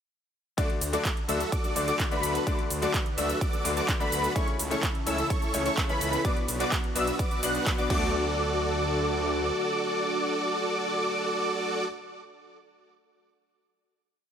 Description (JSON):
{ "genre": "EDM, festival progressive house", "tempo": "127 BPM", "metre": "4/4", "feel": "straight", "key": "D major", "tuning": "A4 = 440 Hz", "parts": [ { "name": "bright grand piano", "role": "accompaniment", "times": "0.6-11.9 s", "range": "B2 to D5", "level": "-34 LUFS", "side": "left 5 dB", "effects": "sidechain pumping, digital delay" }, { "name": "lush unison pad", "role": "sustained chords", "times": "0.6-11.8 s", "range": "C#3 to B4", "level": "-36 LUFS", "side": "left 1 dB", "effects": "chorus, phaser, sidechain pumping" }, { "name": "wide unison lead", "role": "arpeggios", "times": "0.6-11.8 s", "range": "B5 to F#6", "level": "-32 LUFS", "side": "right 1 dB", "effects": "ensemble chorus, sidechain pumping, digital delay" }, { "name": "dense compressed supersaw", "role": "riff", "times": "0.6-11.8 s", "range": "E4 to F#5", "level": "-30 LUFS", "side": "right 1 dB", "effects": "sidechain pumping, digital delay" }, { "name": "big-room dance drum kit", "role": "drums", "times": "0.6-8.0 s", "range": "crash cymbal, handclaps, hi-hat, ride cymbal, shaker", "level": "-33 LUFS", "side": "right 1 dB", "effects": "none" }, { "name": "electronic kick drum", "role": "drums", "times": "0.6-8.0 s", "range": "none", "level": "-29 LUFS", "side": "equal", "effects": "none" }, { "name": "wide detuned saw bass", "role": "bass", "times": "0.8-9.5 s", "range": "B1 to D2", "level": "-33 LUFS", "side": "equal", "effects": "chorus, sidechain pumping" } ], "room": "light reverb", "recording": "none", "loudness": "-25 LUFS", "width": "side -8 dB against mid", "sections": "0.6-8.1 drop; 8.1-11.9 final hit", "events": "drop 0.6-8.1", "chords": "0.6 D; 4.4 A/C#; 6.2 Bm; 7.9 D", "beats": "| 0.58 1.05 1.52 2.00 | 2.47 2.94 3.41 3.88 | 4.36 4.83 5.30 5.78 | 6.25 6.72 7.19 7.67 | 8.14 8.61 9.08 9.55 | 10.03 10.50 10.97 11.44" }